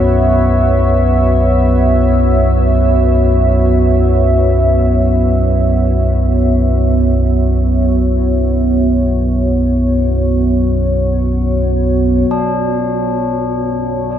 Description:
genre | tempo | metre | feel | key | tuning
dark ambient drone | free time | none | none | B minor | A4 = 440 Hz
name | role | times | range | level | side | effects
deep dark ambient pad | sustained chords | 0.0-14.2 s | B3 to E5 | -14 LUFS | right 1 dB | chorus, built-in reverb
deep rumbling drone | drone | 0.0-14.2 s | B1 to F#2 | -14 LUFS | equal | built-in reverb
bronze singing bowl | texture | 0.0-12.3 s | none | barely audible | none | none
tubular bells | arpeggios | 12.3-14.2 s | D4 | -19 LUFS | left 5 dB | diffuse ambient delay
room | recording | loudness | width
moderate lush hall reverb, RT60 2.5 s | dreamy mix soaked in reverb, cassette tape | -11 LUFS | side -10 dB against mid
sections
0.0-12.3 A section; 12.3-14.2 B section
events
none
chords
0.0 Bsus2; 12.3 Bmadd9

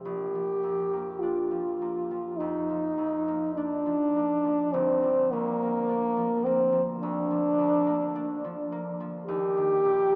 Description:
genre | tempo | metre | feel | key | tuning
classical, romantic duo for French horn and harp | 50-54 BPM | 4/4 | rubato | Bb major | A4 = 440 Hz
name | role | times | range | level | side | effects
mellow French horn | melody | 0.0-10.2 s | Bb3 to G4 | -28 LUFS | equal | none
concert harp | accompaniment | 0.0-10.2 s | G1 to D4 | -38 LUFS | equal | none
room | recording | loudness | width
wet cathedral reverb, RT60 5.1 s | in a vast, echoing space, small speaker sound | -28 LUFS | mono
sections
0.0-10.2 A section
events
none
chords
0.0 Bb; 4.7 Gm7; 9.3 Cm7/Eb (rootless)

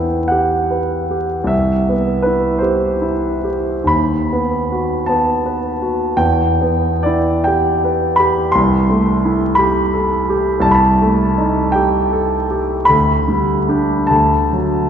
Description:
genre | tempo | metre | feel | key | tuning
classical, romantic nocturne for solo piano | 43-58 BPM (dotted quarters) | 6/8 | rubato | E minor | A4 = 438 Hz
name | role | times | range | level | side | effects
clear grand piano | solo | 0.0-14.9 s | C2 to C6 | -13 LUFS | equal | none
room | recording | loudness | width
wet cathedral reverb, RT60 4.7 s | recorded in a church or concert hall, vinyl crackle, nothing above 7.7 kHz | -13 LUFS | side -8 dB against mid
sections
0.0-14.9 A section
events
none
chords
0.0 Em; 1.5 Cmaj7; 3.9 B/D#; 6.2 Em; 8.6 Am7/C; 10.7 Am7b5/C; 12.9 G/D; 14.1 D

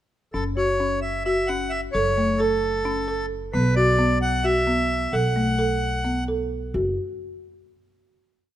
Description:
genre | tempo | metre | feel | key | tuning
contemporary instrumental, chamber music in an uneven meter | 263 BPM (eighths) | 7/8 | straight | F# minor | A4 = 442 Hz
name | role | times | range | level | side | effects
accordion | melody | 0.3-6.2 s | A4 to F#5 | -24 LUFS | equal | none
folk marimba with medium mallets | arpeggios | 0.3-7.0 s | A3 to A4 | -25 LUFS | equal | none
upright bass | bass | 0.3-7.0 s | F#1 to B1 | -27 LUFS | equal | none
room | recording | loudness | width
light reverb | close, detailed microphones | -20 LUFS | side -12 dB against mid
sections
0.3-6.7 A section; 6.7-8.3 final note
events
none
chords
0.3 F#m; 3.5 Bm7; 6.7 N.C.

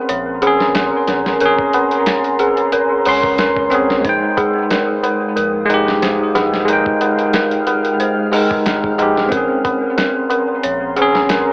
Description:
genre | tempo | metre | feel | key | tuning
trip hop | 91 BPM | 4/4 | swing 55% on 16ths | Bb dorian | A4 = 441 Hz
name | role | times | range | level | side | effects
bell-like tine electric piano | accompaniment | 0.0-11.5 s | Ab3 to C6 | -16 LUFS | equal | harmonic tremolo, tape echo
deep dark ambient pad | sustained chords | 0.0-11.5 s | Ab3 to F6 | -22 LUFS | equal | chorus, built-in reverb
dark detuned synth bell | arpeggios | 0.0-11.5 s | Ab4 to Db5 | -18 LUFS | equal | chorus, tape echo
soft dub sub bass | bass | 0.1-11.5 s | Ab1 to Db2 | -34 LUFS | equal | none
dusty soul sampler-style drum kit | drums | 0.1-11.5 s | hi-hat, kick drum, snare drum | -22 LUFS | equal | none
tabla | percussion | 0.1-11.4 s | none | -23 LUFS | equal | dub echo
room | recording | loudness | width
light reverb | echo-heavy mix, vinyl crackle, AM radio sound | -13 LUFS | side -34 dB against mid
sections
0.0-11.5 A section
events
none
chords
0.0 Bbm9; 4.0 Fm9/Bb; 9.3 Bbm9

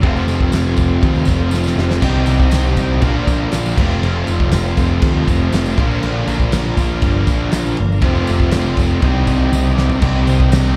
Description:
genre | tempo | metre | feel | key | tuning
classic rock | 120 BPM | 4/4 | straight | unclear | A4 = 437 Hz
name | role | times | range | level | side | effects
overdriven tonewheel organ | sustained chords | 0.0-10.8 s | A3 to F5 | -32 LUFS | equal | none
biting overdriven guitar | riff | 0.0-10.8 s | F2 to G4 | -26 LUFS | equal | none
sludgy distorted guitar | riff | 0.0-10.8 s | F2 to Eb4 | -23 LUFS | equal | overdrive
thick fuzz guitar | riff | 0.0-10.8 s | F2 to C4 | -27 LUFS | equal | none
growling picked electric bass | bass | 0.0-10.7 s | F1 to Eb2 | -19 LUFS | equal | overdrive
damped 70s drum kit | drums | 0.0-10.6 s | crash cymbal, kick drum, snare drum, toms | -21 LUFS | equal | none
tambourine | percussion | 0.0-10.6 s | none | -39 LUFS | equal | none
room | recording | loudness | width
light reverb | live gig heard through the venue's PA, club reverb | -16 LUFS | mono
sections
0.0-10.0 A section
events
drum fill 1.5-2.0, 9.5-10.0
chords
0.0 F; 2.0 Cm; 3.0 Bb; 3.8 F; 5.8 Bb; 8.0 F; 9.0 Cm

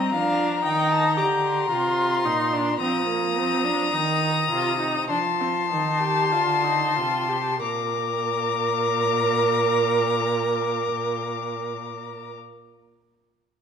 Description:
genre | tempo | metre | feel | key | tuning
classical, baroque-style fugue for string quartet | 45-58 BPM | 4/4 | straight | Bb major | A4 = 441 Hz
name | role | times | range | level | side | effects
dark violin | melody | 0.0-12.3 s | Bb5 to Eb6 | -26 LUFS | left 8 dB | none
rich violin | second line | 0.0-12.3 s | Eb5 to C6 | -28 LUFS | left 3 dB | none
rich viola | accompaniment | 0.0-12.3 s | Bb3 to Bb4 | -26 LUFS | right 2 dB | none
warm cello | bass | 0.0-12.3 s | Bb2 to G3 | -29 LUFS | right 5 dB | none
room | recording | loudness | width
moderate recital hall reverb, RT60 1.6 s | minimal, uncompressed stereo recording | -20 LUFS | side -7 dB against mid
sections
0.0-7.6 A section; 7.6-13.0 B section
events
slowing down 0.0-7.6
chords
0.0 Eb (rootless); 0.6 Cm; 2.8 F7sus4; 5.1 F7; 7.6 Bb

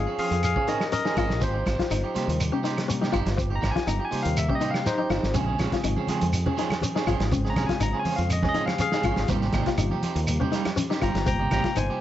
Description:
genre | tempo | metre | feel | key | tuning
afrobeat | 122 BPM | 4/4 | straight | unclear | A4 = 440 Hz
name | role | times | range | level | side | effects
barky tine electric piano | accompaniment | 0.0-12.0 s | C3 to Bb5 | -28 LUFS | left 2 dB | overdrive, auto-pan
kora | arpeggios | 0.0-11.9 s | C4 to F4 | -31 LUFS | left 7 dB | analog delay
fingered electric bass | bass | 0.0-11.9 s | G1 to F2 | -27 LUFS | right 1 dB | none
electric guitar at the edge of break-up | stabs | 0.1-12.0 s | F3 to Ab4 | -31 LUFS | right 6 dB | spring reverb
vintage drum kit | drums | 0.2-11.9 s | hi-hat, kick drum, snare drum | -30 LUFS | right 1 dB | none
shekere | percussion | 0.2-11.9 s | none | -32 LUFS | right 1 dB | none
claves | percussion | 0.4-11.9 s | none | -40 LUFS | right 2 dB | none
congas | percussion | 5.3-11.6 s | none | -32 LUFS | right 2 dB | none
room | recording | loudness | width
light reverb, studio reverb | nothing above 7.8 kHz | -22 LUFS | side -12 dB against mid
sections
0.0-12.0 A section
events
tine electric piano solo 0.0-12.0; drum fill 4.9-5.3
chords
0.0 Bbm9; 1.4 Abmaj7; 5.3 Bbm9; 9.3 Abmaj7

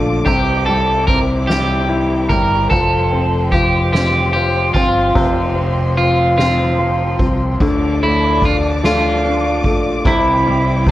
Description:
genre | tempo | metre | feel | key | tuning
six-eight pop ballad | 49 BPM (dotted quarters) | 6/8 | straight | F major | A4 = 440 Hz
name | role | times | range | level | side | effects
electric guitar at the edge of break-up | melody | 0.0-10.9 s | E4 to Bb4 | -17 LUFS | right 1 dB | wide subtle chorus, slapback echo
clear concert grand piano | accompaniment | 0.0-10.9 s | C3 to E4 | -19 LUFS | left 3 dB | none
muted studio string section | sustained chords | 0.0-10.9 s | F3 to D6 | -25 LUFS | equal | none
fingered electric bass | bass | 0.0-10.9 s | F1 to D2 | -20 LUFS | equal | none
soft-mallet drum kit | drums | 0.3-10.9 s | kick drum, ride cymbal, snare drum | -21 LUFS | right 1 dB | none
room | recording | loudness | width
studio ambience | worn, warbling old tape, cassette tape, warbly pitch drift | -13 LUFS | side -14 dB against mid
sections
0.0-10.9 A section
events
none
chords
0.3 Cadd9; 2.7 Fsus2; 7.6 Dm; 10.0 Cadd9

